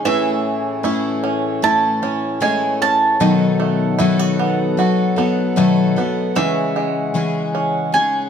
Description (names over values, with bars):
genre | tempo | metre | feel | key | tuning
acoustic folk duo or small band | 76 BPM | 4/4 | straight | unclear | A4 = 440 Hz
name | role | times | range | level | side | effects
picked twelve-string acoustic guitar | accompaniment | 0.0-8.3 s | B2 to A4 | -18 LUFS | left 4 dB | none
pedal harmonium | sustained chords | 0.0-8.3 s | A2 to F#5 | -25 LUFS | equal | none
bluegrass banjo | arpeggios | 0.0-8.3 s | D#3 to F#4 | -22 LUFS | right 6 dB | none
bowl-back mandolin | melody | 0.1-8.3 s | E5 to A5 | -19 LUFS | right 2 dB | none
room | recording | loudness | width
moderate large studio reverb, RT60 1.4 s | close, detailed microphones | -15 LUFS | side -7 dB against mid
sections
0.0-8.3 A section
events
none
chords
0.1 Amaj7; 3.2 B7; 6.4 C#madd9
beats
| 0.05 0.84 1.63 2.42 | 3.21 4.00 4.79 5.57 | 6.36 7.15 7.94